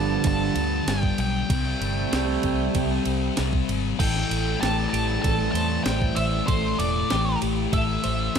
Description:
rock, shoegaze and dream pop; 96 BPM; 4/4; straight; A minor; A4 = 440 Hz
octave-fuzz lead guitar; melody; 0.0-8.4 s; C5 to A5; -29 LUFS; equal; distortion, digital delay
thick fuzz guitar; riff; 0.0-8.4 s; G2 to C4; -28 LUFS; left 14 dB; distortion, lush chorus
twangy electric guitar; riff; 0.0-8.4 s; G2 to E4; -30 LUFS; right 12 dB; reverse reverb
vintage muted fingered electric bass; bass; 0.0-8.4 s; E1 to E2; -27 LUFS; right 1 dB
clean 12-bit digital drum machine; drums; 0.2-8.4 s; crash cymbal, kick drum, ride cymbal, snare drum; -28 LUFS; right 1 dB
twelve-string electric guitar; arpeggios; 4.0-8.4 s; G4 to C5; -32 LUFS; right 13 dB; lush chorus, digital delay
light reverb; -21 LUFS; side -7 dB against mid
0.0-8.4 A section
0.0 G7; 1.5 C6; 4.0 Am7

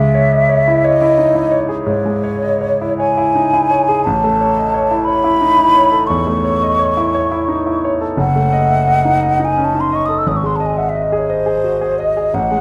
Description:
classical, romantic duo for flute and grand piano; 58 BPM (dotted quarters); 12/8; rubato; C# minor; A4 = 440 Hz
mellow hollow concert flute; melody; 0.0-12.6 s; B#4 to E6; -17 LUFS; equal
clear concert grand piano; accompaniment; 0.0-12.6 s; F#1 to E5; -18 LUFS; equal
moderate recital hall reverb, RT60 1.6 s; -15 LUFS; mono
0.0-12.6 A section
0.0 C#m; 4.0 A; 8.2 D#dim/F#; 10.3 G#

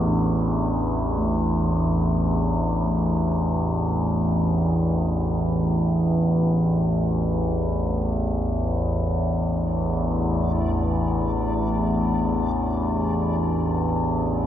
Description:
dark ambient drone; free time; A4 = 439 Hz
overtone-sweeping drone; drone; 0.0-14.5 s; A1 to E2; -21 LUFS; equal; chorus, built-in reverb
bronze singing bowl; arpeggios; 0.1-14.5 s; A2 to D4; -32 LUFS; left 1 dB
backwards swelling texture; texture; 9.9-14.5 s; D5; -43 LUFS; equal; built-in reverb
wet plate reverb, RT60 2.9 s; echo-heavy mix; -20 LUFS; side -10 dB against mid
0.0-9.0 A section; 9.0-14.5 B section
0.0 A5

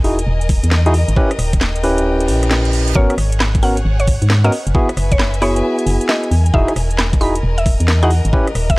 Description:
UK garage, two-step garage; 134 BPM; 4/4; swing 65% on 16ths; A4 = 440 Hz
barky tine electric piano; stabs; 0.0-8.5 s; B3 to B4; -18 LUFS; equal; low-pass filter
organ-like FM bass; bass; 0.0-8.8 s; D#1 to G#2; -16 LUFS; equal
garage drum kit; drums; 0.0-8.8 s; hi-hat, rim click, snare drum, woodblock; -22 LUFS; equal; studio reverb
rich studio string section; texture; 0.0-8.8 s; G#4 to G#5; -27 LUFS; left 2 dB; sidechain pumping
electronic kick drum; drums; 0.5-8.8 s; -15 LUFS; equal; studio reverb
reverse cymbal; sound effects; 2.2-3.0 s; -27 LUFS; right 5 dB
mallet-like synth pluck; melody; 3.0-8.8 s; C#5 to B5; -23 LUFS; equal; chorus, cassette tape
digital ambience; dry, gritty hardware recording, cassette tape; -13 LUFS; side -23 dB against mid
0.0-8.8 A section
reverse cymbal 2.2-3.0
0.0 Emaj9; 1.2 D#7b9b13; 3.0 G#m11; 4.5 F#9sus4; 6.3 Emaj9

